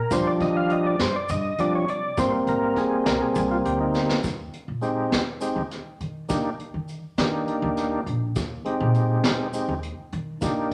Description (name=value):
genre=progressive instrumental, band music in an uneven meter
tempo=204 BPM (eighths)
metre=7/8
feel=straight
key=Eb major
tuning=A4 = 440 Hz
part: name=tonewheel organ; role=accompaniment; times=0.0-10.7 s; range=F3 to F5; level=-26 LUFS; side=equal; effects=chorus vibrato
part: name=upright bass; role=bass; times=0.1-10.7 s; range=Ab1 to Eb3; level=-31 LUFS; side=equal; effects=none
part: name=vintage brush drum kit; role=drums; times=0.1-10.7 s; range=hi-hat, kick drum, snare drum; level=-30 LUFS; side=equal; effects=none
part: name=tube shaker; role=percussion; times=0.1-10.7 s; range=none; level=-46 LUFS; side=equal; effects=none
room=moderate large studio reverb, RT60 1.2 s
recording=none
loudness=-25 LUFS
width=mono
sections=0.0-4.2 A section; 4.2-10.7 B section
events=tonewheel organ solo 0.0-4.2; drum fill 3.9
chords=0.0 Ebmaj9; 2.2 Abmaj9; 4.2 Ebadd11; 6.3 Bbadd11; 8.4 Ebadd11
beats=| 0.11 0.41 0.70 1.00 1.29 1.59 1.88 | 2.17 2.47 2.76 3.06 3.35 3.65 3.94 | 4.24 4.53 4.83 5.12 5.41 5.71 6.00 | 6.30 6.59 6.89 7.18 7.47 7.77 8.06 | 8.36 8.65 8.95 9.24 9.54 9.83 10.12 | 10.42 10.71